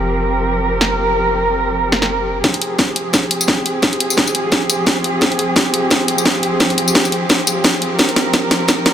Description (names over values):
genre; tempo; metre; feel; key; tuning
half-time drum and bass; 173 BPM; 4/4; swing 57% on 16ths, half-time; F minor; A4 = 440 Hz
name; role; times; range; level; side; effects
muted symphonic cello section; sustained chords; 0.0-8.9 s; F3 to Bb4; -18 LUFS; right 1 dB; sidechain pumping, low-pass filter
long sustained 808-style bass; bass; 0.0-8.9 s; F1 to Ab1; -28 LUFS; equal; high-pass filter
drum and bass drum kit; drums; 0.8-8.9 s; hi-hat, snare drum, tambourine; -15 LUFS; equal; studio reverb
electronic kick drum; drums; 2.4-8.8 s; none; -26 LUFS; equal; none
room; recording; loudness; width
moderate huge ambient reverb, RT60 4.0 s; none; -13 LUFS; side -9 dB against mid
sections
0.0-2.4 A section; 2.4-8.9 B section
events
build-up 2.4-8.9; drum fill 2.4-8.9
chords
0.0 Fsus2; 2.4 Fmadd9